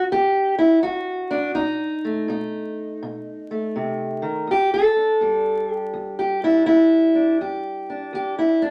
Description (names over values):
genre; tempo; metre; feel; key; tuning
acoustic country blues, solo or duo; 82 BPM; 4/4; swing 65% on 8ths; E minor; A4 = 436 Hz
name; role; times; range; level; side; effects
fingerpicked steel-string acoustic guitar; solo; 0.0-8.7 s; E2 to A4; -21 LUFS; equal; none
room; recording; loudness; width
moderate studio reverb, RT60 0.5 s; vinyl crackle; -21 LUFS; mono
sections
0.0-4.5 A section; 4.5-8.7 B section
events
steel-string acoustic guitar solo 4.5-8.7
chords
0.0 Esus2; 1.6 B7; 4.5 Em7